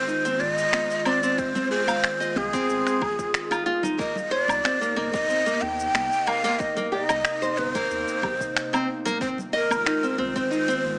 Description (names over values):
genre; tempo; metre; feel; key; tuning
organic downtempo; 92 BPM; 4/4; straight; C minor; A4 = 439 Hz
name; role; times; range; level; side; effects
breathy ney; melody; 0.0-11.0 s; Ab4 to G5; -24 LUFS; equal; tape echo
warbly tape-like pad; sustained chords; 0.0-11.0 s; C3 to F4; -34 LUFS; equal; chorus, built-in reverb, phaser, sidechain pumping
nylon-string guitar; arpeggios; 0.0-10.8 s; Bb3 to F5; -27 LUFS; equal; tape echo
electronic cabasa, finger snaps and woodblock; drums; 0.1-10.8 s; none; -26 LUFS; equal; none
congas; percussion; 0.3-11.0 s; none; -36 LUFS; equal; none
warm sub bass; bass; 0.4-11.0 s; F1 to Eb2; -43 LUFS; equal; sidechain pumping
electronic kick drum; drums; 1.4-10.5 s; none; -35 LUFS; equal; none
room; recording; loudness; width
moderate echo chamber reverb, RT60 1.7 s, studio ambience; small speaker sound; -22 LUFS; side -37 dB against mid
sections
0.0-11.0 A section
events
none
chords
0.0 Fm7; 4.0 Cm7; 9.2 Fm7